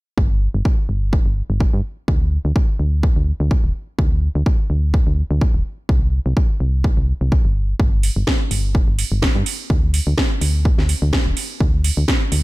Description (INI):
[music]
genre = piano house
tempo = 126 BPM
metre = 4/4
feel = swing 55% on 16ths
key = unclear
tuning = A4 = 439 Hz
[part]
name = solid FM bass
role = bass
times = 0.2-12.4 s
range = D1 to G2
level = -18 LUFS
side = equal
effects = tube saturation, sidechain pumping
[part]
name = electronic kick drum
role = drums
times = 0.2-12.2 s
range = none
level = -17 LUFS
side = equal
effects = studio reverb
[part]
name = house drum kit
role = drums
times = 8.0-12.4 s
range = hi-hat, snare drum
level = -22 LUFS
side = right 2 dB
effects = studio reverb
[sound]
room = little or no reverb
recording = none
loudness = -16 LUFS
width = side -20 dB against mid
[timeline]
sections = 0.2-12.4 A section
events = filter sweep on FM bass 0.2-12.4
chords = none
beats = | 0.18 0.65 1.13 1.60 | 2.08 2.56 3.03 3.51 | 3.99 4.46 4.94 5.41 | 5.89 6.37 6.84 7.32 | 7.79 8.27 8.75 9.22 | 9.70 10.18 10.65 11.13 | 11.61 12.08